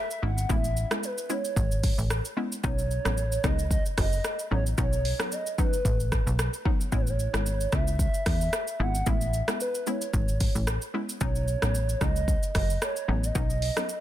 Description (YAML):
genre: afrobeats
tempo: 112 BPM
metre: 4/4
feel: swing 55% on 16ths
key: A lydian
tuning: A4 = 441 Hz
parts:
  - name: hollow clarinet-like synth lead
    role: melody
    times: 0.0-14.0 s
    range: B4 to F#5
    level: -33 LUFS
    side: right 2 dB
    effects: chorus, digital delay
  - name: deep house drum kit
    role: drums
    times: 0.1-14.0 s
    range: hi-hat, kick drum, rim click, shaker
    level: -28 LUFS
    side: equal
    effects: soft clipping on snare
  - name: hollow square pluck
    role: accompaniment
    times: 0.2-13.9 s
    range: F#3 to E4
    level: -34 LUFS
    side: left 1 dB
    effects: chorus
  - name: plucky analog bass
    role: bass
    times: 0.2-13.7 s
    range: F#1 to E2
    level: -28 LUFS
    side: equal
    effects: none
room: little or no reverb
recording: dense, heavily limited modern master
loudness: -25 LUFS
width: side -13 dB against mid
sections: 0.0-14.0 A section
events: none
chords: 0.0 Amaj7; 2.6 Badd9; 6.9 Amaj7; 11.2 Badd9